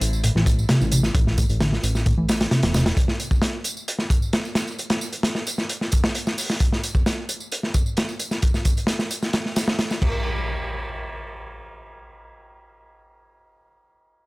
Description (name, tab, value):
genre	breakbeat, breaks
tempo	132 BPM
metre	4/4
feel	straight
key	A minor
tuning	A4 = 440 Hz
part	fat analog bass	bass	0.0-2.9 s	E1 to A1	-23 LUFS	equal	none
part	crunchy breakbeat drum kit	drums	0.0-10.1 s	crash cymbal, hi-hat, kick drum, snare drum	-22 LUFS	equal	none
part	tambourine	drums	0.0-10.0 s	none	-33 LUFS	right 1 dB	none
part	hollow-body short-scale picked electric bass	riff	0.2-2.8 s	A2 to E3	-23 LUFS	equal	low-pass filter, digital delay
part	impact	sound effects	10.0-13.6 s	none	-31 LUFS	equal	none
room	small room ambience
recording	none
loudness	-20 LUFS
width	side -23 dB against mid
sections	0.0-10.2 A section; 10.2-13.9 B section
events	filter sweep on analog synth bass 0.0-3.0; filter sweep on picked electric bass 0.0-3.0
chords	none